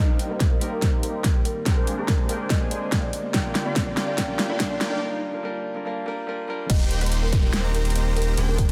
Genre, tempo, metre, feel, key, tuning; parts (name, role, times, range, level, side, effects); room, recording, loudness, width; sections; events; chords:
future bass; 143 BPM; 4/4; half-time; Eb major; A4 = 435 Hz
kalimba; melody; 0.0-8.7 s; Bb4 to G5; -34 LUFS; equal; sidechain pumping, low-pass filter, dub echo
warm concert grand piano; accompaniment; 0.0-6.7 s; G3 to Bb4; -34 LUFS; equal; sidechain pumping, delay
ethereal airy pad; sustained chords; 0.8-8.7 s; D3 to G4; -42 LUFS; equal
supersaw chords; riff; 0.0-8.7 s; Bb3 to C6; -34 LUFS; equal; sidechain pumping, low-pass filter
saturated sub bass; bass; 0.0-8.7 s; Eb1; -27 LUFS; equal; sidechain pumping, high-pass filter
riser and downlifter; sound effects; 0.1-8.7 s; -39 LUFS; equal
dubstep drum kit; drums; 0.2-8.7 s; crash cymbal, hi-hat, snare drum; -30 LUFS; equal
electronic kick drum; drums; 0.4-8.7 s; -24 LUFS; equal
light reverb; high-pass filter; -24 LUFS; mono
0.0-6.7 A section; 6.7-8.7 B section
build-up 0.0-6.7; drum fill 0.0-5.0; filter sweep on supersaw synth 0.0-6.7; break 5.0-6.7; drop 6.7-8.7
0.0 Eb6; 1.7 Abmaj9#11/Eb; 3.3 Gm7/Eb; 5.0 Gm7; 6.7 Eb6